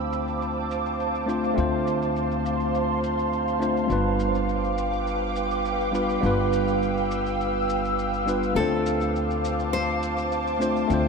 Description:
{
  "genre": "sunset chillout",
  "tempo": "103 BPM",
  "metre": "4/4",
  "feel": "straight",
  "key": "D dorian",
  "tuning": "A4 = 441 Hz",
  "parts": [
    { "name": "tine electric piano", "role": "accompaniment", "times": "0.0-11.1 s", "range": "G3 to C5", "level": "-26 LUFS", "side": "moving between left 5 dB and right 4 dB", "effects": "auto-pan, digital delay" },
    { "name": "ethereal airy pad", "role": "sustained chords", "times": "0.0-11.1 s", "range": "B4 to E6", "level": "-26 LUFS", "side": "right 1 dB", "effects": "ensemble chorus, built-in reverb" },
    { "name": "upright bass", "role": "bass", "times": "0.0-11.1 s", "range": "G1 to D2", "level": "-31 LUFS", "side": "equal", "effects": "none" },
    { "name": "shaker", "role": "drums", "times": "0.1-11.0 s", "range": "none", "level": "-47 LUFS", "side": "left 4 dB", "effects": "overdrive, low-pass filter on hats, low-pass filter on perc, low-pass filter on snare" },
    { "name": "nylon-string guitar", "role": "melody", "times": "8.6-10.6 s", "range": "A4 to C5", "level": "-29 LUFS", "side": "left 3 dB", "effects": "digital delay" }
  ],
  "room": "moderate lush hall reverb, RT60 2.0 s",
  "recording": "none",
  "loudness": "-22 LUFS",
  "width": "side -4 dB against mid",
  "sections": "0.0-11.1 A section",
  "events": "none",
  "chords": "0.0 Dm7; 3.9 G7; 8.6 Dm7"
}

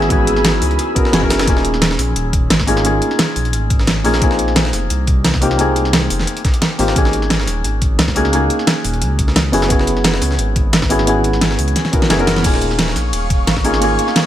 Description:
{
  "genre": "liquid drum and bass",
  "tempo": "175 BPM",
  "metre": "4/4",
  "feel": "swing 53% on 16ths",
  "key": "unclear",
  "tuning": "A4 = 440 Hz",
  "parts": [
    { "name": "felt-muted upright piano", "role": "accompaniment", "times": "0.0-14.3 s", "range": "Fb3 to Bb4", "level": "-18 LUFS", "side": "left 1 dB", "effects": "tape echo" },
    { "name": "ethereal airy pad", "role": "sustained chords", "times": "0.0-1.4, 12.8-14.3 s", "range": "Ab4 to Fb6", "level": "-24 LUFS", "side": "right 1 dB", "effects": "ensemble chorus, built-in reverb, sidechain pumping" },
    { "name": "concert harp", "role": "arpeggios", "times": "0.0-4.0 s", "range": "Db4 to Ab4", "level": "-25 LUFS", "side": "right 1 dB", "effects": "tape echo" },
    { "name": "dark detuned saw bass", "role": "bass", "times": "0.0-14.0 s", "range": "Eb1 to Db2", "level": "-19 LUFS", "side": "equal", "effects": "tube saturation" },
    { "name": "pop drum kit", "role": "drums", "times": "0.0-14.2 s", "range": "crash cymbal, hi-hat, ride cymbal, snare drum", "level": "-19 LUFS", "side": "right 1 dB", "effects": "none" },
    { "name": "breakbeat sampler-style drum kit", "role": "drums", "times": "0.1-14.2 s", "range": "hi-hat, snare drum", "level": "-22 LUFS", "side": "equal", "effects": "high-pass filter on hats, high-pass filter on snare" },
    { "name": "electronic kick drum", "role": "drums", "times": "0.1-13.6 s", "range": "none", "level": "-17 LUFS", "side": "equal", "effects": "none" }
  ],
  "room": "light reverb, digital ambience",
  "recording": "none",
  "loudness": "-13 LUFS",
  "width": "side -12 dB against mid",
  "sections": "0.0-1.5 A section; 1.5-14.3 A section",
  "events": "drop 0.0-1.5, 1.5-14.3; band accent 1.1; drum fill 11.8-12.4; kick drops out 12.1-12.4",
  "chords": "0.0 Gb9sus4; 1.5 Eb9sus4; 4.2 Bb9sus4; 7.0 Ab9sus4; 9.5 Gb9sus4; 12.4 Eb9sus4"
}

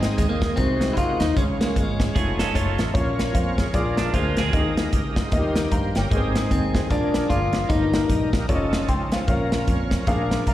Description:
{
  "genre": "uptempo gospel",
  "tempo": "152 BPM",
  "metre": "4/4",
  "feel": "swing 60% on 8ths",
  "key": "unclear",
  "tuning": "A4 = 440 Hz",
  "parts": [
    { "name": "warm grand piano", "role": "accompaniment", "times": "0.0-10.5 s", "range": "G2 to C6", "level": "-27 LUFS", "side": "left 2 dB", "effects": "slapback echo" },
    { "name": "bright tonewheel organ", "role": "sustained chords", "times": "0.0-10.5 s", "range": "Eb3 to G5", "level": "-30 LUFS", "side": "right 3 dB", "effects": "slow rotary speaker, overdrive, chorus vibrato" },
    { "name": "fingered electric bass", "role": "bass", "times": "0.0-10.5 s", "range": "F1 to G2", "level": "-26 LUFS", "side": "equal", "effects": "none" },
    { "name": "natural country drum kit", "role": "drums", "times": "0.0-10.5 s", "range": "hi-hat, kick drum, snare drum", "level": "-24 LUFS", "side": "equal", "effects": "none" },
    { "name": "clean electric guitar", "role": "melody", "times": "0.2-2.2, 6.5-8.3 s", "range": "Ab3 to F4", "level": "-24 LUFS", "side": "left 2 dB", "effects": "none" },
    { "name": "clean electric guitar", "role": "second line", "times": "2.1-4.8 s", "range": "F3 to A4", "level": "-28 LUFS", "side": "right 7 dB", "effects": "spring reverb, slapback echo" }
  ],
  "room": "light reverb, small room reverb",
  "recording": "live gig heard through the venue's PA, recital hall reverb",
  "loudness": "-19 LUFS",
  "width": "side -13 dB against mid",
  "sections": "0.0-10.5 A section",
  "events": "tonewheel organ fill 5.3-6.1; grand piano fill 8.7-9.3",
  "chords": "0.0 Ab; 0.6 Ab7/C; 1.4 Db; 2.2 Faug7; 2.9 Bbm; 3.7 Bb7; 4.5 Ebsus4; 5.3 Eb; 6.1 Ab; 6.9 Bb7; 7.7 Eb/G; 8.5 F7b13; 9.3 Bbm"
}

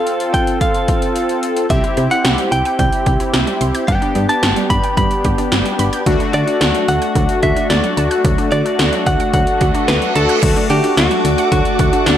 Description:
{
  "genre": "synth-pop",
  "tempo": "110 BPM",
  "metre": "4/4",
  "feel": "straight",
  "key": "unclear",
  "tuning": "A4 = 439 Hz",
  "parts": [
    { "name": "direct-recorded clean electric guitar", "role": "melody", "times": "0.0-12.2 s", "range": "D4 to B5", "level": "-19 LUFS", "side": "right 1 dB", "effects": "analog delay" },
    { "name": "analog synth brass", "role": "accompaniment", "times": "0.0-12.2 s", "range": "A3 to A4", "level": "-18 LUFS", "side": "left 2 dB", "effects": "chorus" },
    { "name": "80s electronic pad drums", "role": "drums", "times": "0.1-12.2 s", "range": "crash cymbal, hi-hat, kick drum, snare drum", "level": "-18 LUFS", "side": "equal", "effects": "gated reverb" },
    { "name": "analog pluck", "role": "arpeggios", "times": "1.7-12.2 s", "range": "F#3 to G6", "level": "-24 LUFS", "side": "right 5 dB", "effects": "chorus" },
    { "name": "solid FM bass", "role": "bass", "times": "1.7-12.2 s", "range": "G1 to D3", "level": "-19 LUFS", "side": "equal", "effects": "none" },
    { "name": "reverse cymbal", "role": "sound effects", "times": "9.6-10.4 s", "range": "none", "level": "-25 LUFS", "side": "right 6 dB", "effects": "none" },
    { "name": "string machine, cellos", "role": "sustained chords", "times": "10.4-12.2 s", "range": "A4 to D6", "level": "-22 LUFS", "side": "right 1 dB", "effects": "ensemble chorus" }
  ],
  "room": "light reverb, digital ambience",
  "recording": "none",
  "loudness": "-13 LUFS",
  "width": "side -10 dB against mid",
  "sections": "0.0-10.4 A section; 10.4-12.2 B section",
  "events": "reverse cymbal 9.6-10.4",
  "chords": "0.0 F; 1.7 C; 3.9 G; 6.1 D"
}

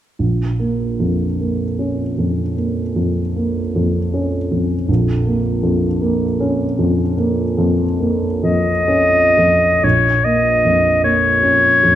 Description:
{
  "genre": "classical, romantic duo for clarinet and grand piano",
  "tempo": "39-54 BPM (dotted quarters)",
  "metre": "12/8",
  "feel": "rubato",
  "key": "Bb minor",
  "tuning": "A4 = 441 Hz",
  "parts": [
    { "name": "dark baby grand piano", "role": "accompaniment", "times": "0.2-12.0 s", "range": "Bb1 to Db4", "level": "-16 LUFS", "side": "right 1 dB", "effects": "none" },
    { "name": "bright clarinet", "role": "melody", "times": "8.4-12.0 s", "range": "Db5 to Eb5", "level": "-12 LUFS", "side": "left 1 dB", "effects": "none" }
  ],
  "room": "moderate recital hall reverb, RT60 1.5 s",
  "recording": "none",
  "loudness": "-14 LUFS",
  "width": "side -12 dB against mid",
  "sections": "0.2-9.8 A section; 9.8-12.0 B section",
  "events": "none",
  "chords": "0.2 Bbm"
}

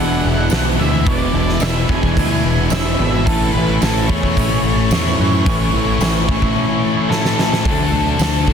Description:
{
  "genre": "rock, shoegaze and dream pop",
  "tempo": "109 BPM",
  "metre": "4/4",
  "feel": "straight",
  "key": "unclear",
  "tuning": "A4 = 440 Hz",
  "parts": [
    { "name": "octave-fuzz lead guitar", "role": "melody", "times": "0.0-8.5 s", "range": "A4 to G#5", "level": "-23 LUFS", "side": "equal", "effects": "distortion, slapback echo" },
    { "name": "granular cloud pad", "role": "sustained chords", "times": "0.0-8.5 s", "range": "A4 to D6", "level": "-31 LUFS", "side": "right 2 dB", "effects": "built-in reverb" },
    { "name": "electric guitar through a small old amp", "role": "arpeggios", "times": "0.0-8.5 s", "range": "E3 to A4", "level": "-28 LUFS", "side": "right 1 dB", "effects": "none" },
    { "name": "clean electric guitar", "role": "riff", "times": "0.0-7.6 s", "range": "E2 to E4", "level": "-24 LUFS", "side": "right 12 dB", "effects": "reverse reverb" },
    { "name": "thick fuzz guitar", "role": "riff", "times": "0.0-8.5 s", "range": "E2 to D4", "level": "-21 LUFS", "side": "left 10 dB", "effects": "distortion, ensemble chorus" },
    { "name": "tight distorted guitar", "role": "riff", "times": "0.0-8.5 s", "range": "E2 to D4", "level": "-24 LUFS", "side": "equal", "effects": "distortion" },
    { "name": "growling fingered electric bass", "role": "bass", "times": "0.0-8.5 s", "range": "E1 to A2", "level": "-20 LUFS", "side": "equal", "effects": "overdrive" },
    { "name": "huge arena drum kit", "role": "drums", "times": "0.5-8.5 s", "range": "hi-hat, kick drum, snare drum", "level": "-20 LUFS", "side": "equal", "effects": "none" },
    { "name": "tambourine", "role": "percussion", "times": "0.5-8.3 s", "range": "none", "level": "-32 LUFS", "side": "right 21 dB", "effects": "none" }
  ],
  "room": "little or no reverb",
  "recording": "dense, heavily limited modern master",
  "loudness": "-14 LUFS",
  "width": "side -7 dB against mid",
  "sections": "0.0-7.7 A section",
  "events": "drum fill 7.1-7.7",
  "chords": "0.0 E7; 3.3 Amaj7; 7.7 Dmaj7"
}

